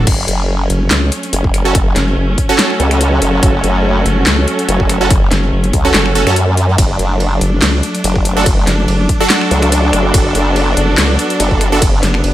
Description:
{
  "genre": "heavy wobble dubstep",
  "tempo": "143 BPM",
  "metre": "4/4",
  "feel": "swing 54% on 16ths, half-time",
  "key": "F# minor",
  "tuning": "A4 = 440 Hz",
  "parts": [
    { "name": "warm studio string section", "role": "sustained chords", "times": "0.0-12.3 s", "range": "F#3 to D4", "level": "-18 LUFS", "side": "left 1 dB", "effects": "sidechain pumping" },
    { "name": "supersaw stab", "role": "stabs", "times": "0.0-11.8 s", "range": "C#4 to A4", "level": "-17 LUFS", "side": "right 2 dB", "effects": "digital delay" },
    { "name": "vowel-sweep wobble bass", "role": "bass", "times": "0.0-12.3 s", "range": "F#1 to C#2", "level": "-14 LUFS", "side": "equal", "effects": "chorus, overdrive" },
    { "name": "formant-sweep wobble bass", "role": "bass", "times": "0.1-12.0 s", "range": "F#1 to F#2", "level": "-14 LUFS", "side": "equal", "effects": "chorus, overdrive" },
    { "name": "dubstep drum kit", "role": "drums", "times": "0.1-12.3 s", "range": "crash cymbal, finger snaps, handclaps, hi-hat, ride cymbal, snare drum", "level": "-17 LUFS", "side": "left 1 dB", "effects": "none" },
    { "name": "electronic kick drum", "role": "drums", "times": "0.1-11.9 s", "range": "none", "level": "-14 LUFS", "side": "equal", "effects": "none" }
  ],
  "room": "little or no reverb",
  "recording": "none",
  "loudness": "-10 LUFS",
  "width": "side -14 dB against mid",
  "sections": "0.0-12.3 A section",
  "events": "none",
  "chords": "0.1 F#m; 6.8 D/F#"
}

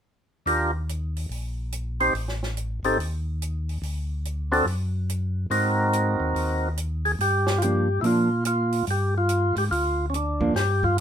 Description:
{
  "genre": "soul jazz organ trio",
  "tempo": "143 BPM",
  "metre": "4/4",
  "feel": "swing 65% on 8ths",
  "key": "G minor",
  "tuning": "A4 = 440 Hz",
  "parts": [
    { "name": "percussive tonewheel organ", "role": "melody", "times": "0.5-11.0 s", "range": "C4 to C5", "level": "-23 LUFS", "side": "equal", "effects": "slow rotary speaker" },
    { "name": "mellow tonewheel organ", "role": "bass", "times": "0.5-11.0 s", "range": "Ab1 to Bb2", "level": "-26 LUFS", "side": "equal", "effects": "slow rotary speaker" },
    { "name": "compact cocktail drum kit", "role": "drums", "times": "0.5-11.0 s", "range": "hi-hat, kick drum, snare drum", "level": "-35 LUFS", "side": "right 2 dB", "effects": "none" },
    { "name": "hollow-body jazz guitar", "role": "accompaniment", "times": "7.6-10.5 s", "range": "F3 to D4", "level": "-24 LUFS", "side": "right 2 dB", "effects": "none" }
  ],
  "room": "moderate studio reverb, RT60 0.5 s",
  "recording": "minimal, uncompressed stereo recording",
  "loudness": "-22 LUFS",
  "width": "side -9 dB against mid",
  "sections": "0.5-7.2 A section; 7.2-11.0 B section",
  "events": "none",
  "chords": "0.5 Ebmaj7; 2.1 A(b5, no3); 3.8 D; 5.5 Ab7; 7.2 Gm7"
}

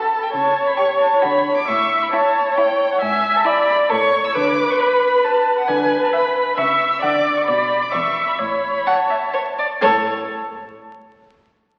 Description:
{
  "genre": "quick classical-period movement for string quartet",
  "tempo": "125-136 BPM",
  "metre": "3/4",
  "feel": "straight",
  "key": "A major from 4.4 s",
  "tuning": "A4 = 443 Hz",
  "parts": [
    { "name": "warm violin", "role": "melody", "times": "0.0-10.1 s", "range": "F#5 to E6", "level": "-23 LUFS", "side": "equal", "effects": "none" },
    { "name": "rich violin", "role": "second line", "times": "0.0-10.1 s", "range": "E4 to F#5", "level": "-27 LUFS", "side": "equal", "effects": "none" },
    { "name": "warm viola", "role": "accompaniment", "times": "0.0-10.1 s", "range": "A4 to E5", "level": "-20 LUFS", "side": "equal", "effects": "none" },
    { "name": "rich cello", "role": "bass", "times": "0.3-10.1 s", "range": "E2 to D3", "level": "-32 LUFS", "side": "equal", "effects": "none" }
  ],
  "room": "wet concert hall reverb, RT60 1.9 s",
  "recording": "very old 78 rpm record, vinyl crackle",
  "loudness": "-18 LUFS",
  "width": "mono",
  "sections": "0.0-9.8 A section; 9.8-11.2 B section",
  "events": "none",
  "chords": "0.3 A7/C#; 1.2 D; 1.7 A; 3.0 E7/G#; 3.9 A; 4.4 Bm/D; 6.6 C#m; 7.0 D; 7.5 Bm; 7.9 Bmadd11/E (rootless); 8.4 A; 9.8 N.C."
}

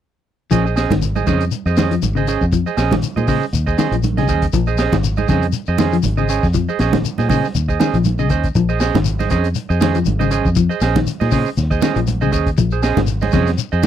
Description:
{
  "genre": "afrobeat",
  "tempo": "119 BPM",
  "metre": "4/4",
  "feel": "swing 55% on 16ths",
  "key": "Bb minor",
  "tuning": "A4 = 438 Hz",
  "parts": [
    { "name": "semi-hollow electric guitar", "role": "arpeggios", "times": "0.5-13.9 s", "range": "C3 to F3", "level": "-20 LUFS", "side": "left 6 dB", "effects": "none" },
    { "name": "clean electric guitar", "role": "stabs", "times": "0.5-13.9 s", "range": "Db4 to Eb5", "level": "-20 LUFS", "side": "right 9 dB", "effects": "none" },
    { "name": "fingered electric bass", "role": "bass", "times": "0.5-13.9 s", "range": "Ab1 to Bb2", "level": "-19 LUFS", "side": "equal", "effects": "none" },
    { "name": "crunchy breakbeat drum kit", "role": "drums", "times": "0.5-13.9 s", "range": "hi-hat, kick drum, snare drum", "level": "-22 LUFS", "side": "equal", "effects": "none" },
    { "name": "congas", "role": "percussion", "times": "0.5-13.9 s", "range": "none", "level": "-24 LUFS", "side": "right 8 dB", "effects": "none" },
    { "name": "shekere", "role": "percussion", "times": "0.5-13.9 s", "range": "none", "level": "-26 LUFS", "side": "left 9 dB", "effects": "none" }
  ],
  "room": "little or no reverb",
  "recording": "dry, close 1970s-style studio recording",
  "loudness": "-15 LUFS",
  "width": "side -10 dB against mid",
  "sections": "0.5-13.9 A section",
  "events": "none",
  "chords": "0.5 Bbm11"
}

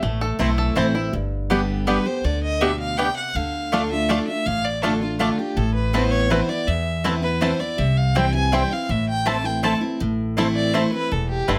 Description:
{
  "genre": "bluegrass",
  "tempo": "162 BPM",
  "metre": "3/4",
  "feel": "straight",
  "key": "A minor",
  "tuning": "A4 = 441 Hz",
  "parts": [
    { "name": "bluegrass banjo", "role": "melody", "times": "0.0-11.6 s", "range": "A3 to E5", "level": "-30 LUFS", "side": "equal", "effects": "none" },
    { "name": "picked steel-string acoustic guitar", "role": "accompaniment", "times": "0.0-11.6 s", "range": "E2 to G4", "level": "-27 LUFS", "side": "equal", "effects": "none" },
    { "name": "upright bass", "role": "bass", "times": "0.0-11.6 s", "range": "E1 to E2", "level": "-27 LUFS", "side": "equal", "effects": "none" },
    { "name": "mandolin", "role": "stabs", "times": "0.4-11.6 s", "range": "A3 to A5", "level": "-27 LUFS", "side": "equal", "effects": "none" },
    { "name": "rich fiddle", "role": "melody", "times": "1.9-11.6 s", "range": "F4 to A5", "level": "-28 LUFS", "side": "equal", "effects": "none" }
  ],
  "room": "light reverb",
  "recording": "close, detailed microphones",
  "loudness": "-22 LUFS",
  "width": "mono",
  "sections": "0.0-1.1 A section; 1.1-10.0 B section; 10.0-11.6 C section",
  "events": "five-string banjo solo 0.0-1.1",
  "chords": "0.0 Am; 1.1 G; 3.4 Dm; 5.6 Amadd9; 7.8 C; 8.9 Am"
}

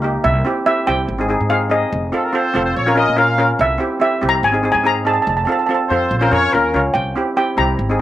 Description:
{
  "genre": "calypso",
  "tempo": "143 BPM",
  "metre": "4/4",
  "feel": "straight",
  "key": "unclear",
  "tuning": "A4 = 440 Hz",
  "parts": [
    { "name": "steel pan", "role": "accompaniment", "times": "0.0-8.0 s", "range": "Bb3 to Db5", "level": "-18 LUFS", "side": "equal", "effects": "slapback echo" },
    { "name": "upright bass", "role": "bass", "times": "0.0-8.0 s", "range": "F1 to Bb2", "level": "-21 LUFS", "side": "equal", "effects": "none" },
    { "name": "steel pan", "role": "melody", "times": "0.2-8.0 s", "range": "Eb5 to Bb5", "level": "-17 LUFS", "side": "right 1 dB", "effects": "none" },
    { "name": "warm horn section", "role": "second line", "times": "2.1-6.8 s", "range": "A4 to F5", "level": "-18 LUFS", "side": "left 2 dB", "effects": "none" }
  ],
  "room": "little or no reverb",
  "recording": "recorded outdoors, with no room sound",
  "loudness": "-14 LUFS",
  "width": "side -13 dB against mid",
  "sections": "0.2-8.0 A section",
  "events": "none",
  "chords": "0.2 C; 1.1 Ab; 1.9 F; 2.8 Bbm; 3.6 C; 4.4 Ab; 5.3 F; 6.1 Bbm; 6.9 C"
}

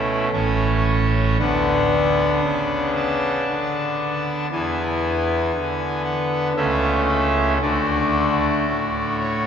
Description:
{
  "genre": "classical, chorale-style piece for pipe organ",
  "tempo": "58 BPM",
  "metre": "3/4",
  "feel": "straight",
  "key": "A major",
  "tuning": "A4 = 440 Hz",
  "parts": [
    { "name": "pipe organ, trumpet", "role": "solo", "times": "0.0-9.5 s", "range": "A1 to A5", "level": "-18 LUFS", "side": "equal", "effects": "none" }
  ],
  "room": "wet cathedral reverb, RT60 5.1 s",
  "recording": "heard from further back in the room, nothing above 7.8 kHz",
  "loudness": "-18 LUFS",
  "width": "side -8 dB against mid",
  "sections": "0.0-9.5 A section",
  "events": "none",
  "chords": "0.3 A; 1.4 Bm/D; 4.5 E; 6.6 A/C#; 7.6 D"
}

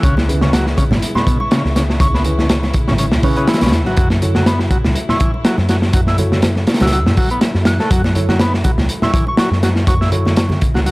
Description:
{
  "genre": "breakbeat, breaks",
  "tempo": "122 BPM",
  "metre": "4/4",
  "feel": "swing 55% on 16ths",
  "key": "unclear",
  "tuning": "A4 = 440 Hz",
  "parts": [
    { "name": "soft synth bell", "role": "melody", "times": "0.0-10.6 s", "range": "B5 to F#6", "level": "-25 LUFS", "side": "equal", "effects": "chorus, small speaker sound, tape echo" },
    { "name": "warm studio string section", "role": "sustained chords", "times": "0.0-10.9 s", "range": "C#3 to E4", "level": "-27 LUFS", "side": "left 1 dB", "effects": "sidechain pumping" },
    { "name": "combo organ", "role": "riff", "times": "0.0-10.9 s", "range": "B2 to E4", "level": "-22 LUFS", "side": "equal", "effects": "overdrive, tape echo" },
    { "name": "hollow-body short-scale picked electric bass", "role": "bass", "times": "0.0-10.9 s", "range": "G#1 to F#2", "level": "-17 LUFS", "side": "equal", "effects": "none" },
    { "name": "crunchy breakbeat drum kit", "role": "drums", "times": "0.0-10.9 s", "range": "hi-hat, kick drum, snare drum", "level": "-15 LUFS", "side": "equal", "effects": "none" },
    { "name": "bongos and congas", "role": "percussion", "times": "0.2-10.9 s", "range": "none", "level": "-24 LUFS", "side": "right 1 dB", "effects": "none" },
    { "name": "tine electric piano", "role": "stabs", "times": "0.3-10.3 s", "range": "C#4 to C#5", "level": "-25 LUFS", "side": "right 2 dB", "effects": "medium stereo tremolo, tape echo" }
  ],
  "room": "small room ambience",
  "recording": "dry, gritty hardware recording",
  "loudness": "-12 LUFS",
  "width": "side -22 dB against mid",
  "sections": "0.0-10.9 A section",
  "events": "none",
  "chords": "0.0 C#m7; 4.0 F#m7"
}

